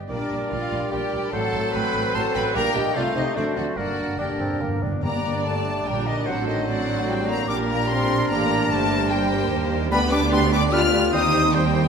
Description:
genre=quick classical-period movement for symphony orchestra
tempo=147 BPM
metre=3/4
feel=straight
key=G minor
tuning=A4 = 441 Hz
part: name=rich chamber violin section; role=melody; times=0.1-11.9 s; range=D5 to F6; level=-29 LUFS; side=left 3 dB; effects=none
part: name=bright concert flute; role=second line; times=0.1-11.9 s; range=A4 to F6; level=-29 LUFS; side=left 1 dB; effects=none
part: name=clear oboe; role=second line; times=0.1-11.8 s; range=Bb4 to D5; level=-33 LUFS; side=right 1 dB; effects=none
part: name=rich chamber violin section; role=second line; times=0.1-11.9 s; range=D4 to F#5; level=-32 LUFS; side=left 5 dB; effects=none
part: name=warm clarinet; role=second line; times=0.1-11.8 s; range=D4 to Bb4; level=-31 LUFS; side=right 2 dB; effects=none
part: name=rich chamber viola section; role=accompaniment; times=0.1-11.9 s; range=Bb3 to D5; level=-29 LUFS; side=right 3 dB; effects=none
part: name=warm bassoon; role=accompaniment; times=0.1-11.8 s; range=F#3 to D4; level=-30 LUFS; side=right 1 dB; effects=none
part: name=dark French horn section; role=sustained chords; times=0.1-11.9 s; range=D3 to F4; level=-29 LUFS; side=left 4 dB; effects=none
part: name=dark chamber double bass section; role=bass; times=0.1-11.9 s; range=G1 to Eb2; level=-29 LUFS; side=right 3 dB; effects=none
part: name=warm chamber cello section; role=bass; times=0.1-11.9 s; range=D2 to D3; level=-30 LUFS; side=right 4 dB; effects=none
part: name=timpani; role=percussion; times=3.8-5.6 s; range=G2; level=-31 LUFS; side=left 1 dB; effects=none
room=wet concert hall reverb, RT60 1.8 s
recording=none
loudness=-20 LUFS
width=side -6 dB against mid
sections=0.0-5.0 A section; 5.0-11.9 B section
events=timpani fill 3.8-5.0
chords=0.1 Gm/Bb; 1.3 F#dim/A; 2.5 Gm/Bb; 3.0 Adim/C; 3.4 D7; 3.8 Gm; 6.3 D7/A; 7.5 Gm/Bb; 8.7 Gm; 9.9 G7/D; 11.1 Cm/Eb

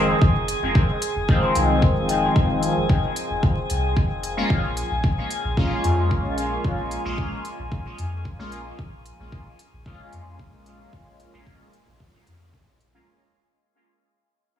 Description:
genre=dub techno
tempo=112 BPM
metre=4/4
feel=straight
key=unclear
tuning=A4 = 440 Hz
part: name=soft dub sub bass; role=bass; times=0.0-13.0 s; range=F1 to F2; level=-28 LUFS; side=equal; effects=sidechain pumping
part: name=drifting glass-harmonics texture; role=texture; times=0.0-13.1 s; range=Ab4 to Ab5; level=-30 LUFS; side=equal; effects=chorus, built-in reverb, sidechain pumping
part: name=electronic kick drum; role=drums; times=0.2-12.6 s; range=none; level=-21 LUFS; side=equal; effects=small room reverb
part: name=electronic hi-hat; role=drums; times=0.5-12.9 s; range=none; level=-33 LUFS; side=equal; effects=small room reverb
part: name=resonant sweep polysynth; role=stabs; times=1.3-13.1 s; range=Eb3 to F4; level=-24 LUFS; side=left 1 dB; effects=chorus, phaser, sidechain pumping, dub echo
room=light reverb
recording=vinyl crackle, small room ambience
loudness=-20 LUFS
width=side -10 dB against mid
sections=0.0-13.1 A section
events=fade-out 0.0-13.1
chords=0.0 Fm7; 4.5 Bbm7

